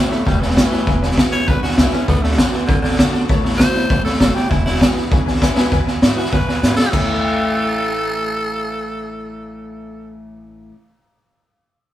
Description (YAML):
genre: rockabilly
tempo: 198 BPM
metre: 4/4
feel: straight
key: A major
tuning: A4 = 440 Hz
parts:
  - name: growling tenor saxophone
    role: melody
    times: 0.0-10.1 s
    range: D3 to C#5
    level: -23 LUFS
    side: equal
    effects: none
  - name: honky-tonk upright piano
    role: accompaniment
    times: 0.0-10.7 s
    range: B4 to B5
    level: -29 LUFS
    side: left 6 dB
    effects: none
  - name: picked steel-string acoustic guitar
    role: accompaniment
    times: 0.0-10.8 s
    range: E2 to F#4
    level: -29 LUFS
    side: left 3 dB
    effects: none
  - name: electric guitar through a small old amp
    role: riff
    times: 0.0-10.8 s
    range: E2 to E4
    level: -26 LUFS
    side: right 1 dB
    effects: none
  - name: upright bass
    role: bass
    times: 0.1-10.7 s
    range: E1 to G#2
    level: -23 LUFS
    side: equal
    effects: none
  - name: raw garage drum kit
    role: drums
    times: 0.1-7.0 s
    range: crash cymbal, hi-hat, kick drum, snare drum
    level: -16 LUFS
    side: equal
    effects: none
room: light reverb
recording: band playing live in one room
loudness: -14 LUFS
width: side -13 dB against mid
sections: 0.0-5.7 A section; 5.7-6.9 B section; 6.9-9.4 C section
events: drum fill 5.4-5.7, 6.6-6.9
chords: 0.0 A; 0.9 E; 2.1 D; 3.3 A; 4.5 E; 6.9 A